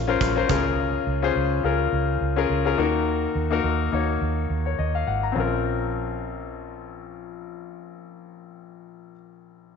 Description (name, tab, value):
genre	piano-driven pop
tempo	105 BPM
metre	4/4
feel	swing 56% on 16ths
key	Bb minor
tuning	A4 = 439 Hz
part	bright concert grand piano	accompaniment	0.0-9.8 s	Bb1 to Bb5	-25 LUFS	left 8 dB	none
part	vintage muted fingered electric bass	bass	0.0-9.1 s	Ab1 to Eb2	-27 LUFS	right 3 dB	none
part	huge arena drum kit	drums	0.2-0.6 s	hi-hat, kick drum	-28 LUFS	right 6 dB	none
room	moderate echo chamber reverb, RT60 1.6 s, small room ambience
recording	1960s-style stereo with parts hard left and right, nothing above 7.6 kHz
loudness	-21 LUFS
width	side -6 dB against mid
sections	0.0-5.4 A section; 5.4-7.7 B section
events	none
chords	0.5 Db6; 2.8 Ebm; 5.4 Bbmadd9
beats	0.21 | 0.78 1.35 1.93 2.50 | 3.07 3.64 4.22 4.79 | 5.36 5.93 6.51 7.08